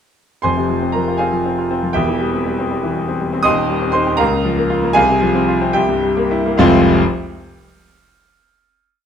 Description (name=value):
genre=classical, virtuoso piano study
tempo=69-81 BPM (dotted quarters)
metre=6/8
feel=rubato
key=F minor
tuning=A4 = 440 Hz
part: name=clear concert grand piano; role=solo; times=0.4-7.0 s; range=Eb1 to Eb6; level=-14 LUFS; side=equal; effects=none
room=moderate large studio reverb, RT60 1.3 s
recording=close, detailed microphones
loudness=-14 LUFS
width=side -8 dB against mid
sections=0.4-6.6 A section; 6.6-8.3 final chord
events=slowing down 2.7-6.6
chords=0.4 Fm; 2.0 C/E; 3.5 Cm/Eb; 4.2 Bbm/Db; 5.0 Fm/C; 5.8 C7; 6.6 Fm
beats=| 0.44 1.21 | 1.96 2.71 | 3.45 4.19 | 4.96 5.75 | 6.60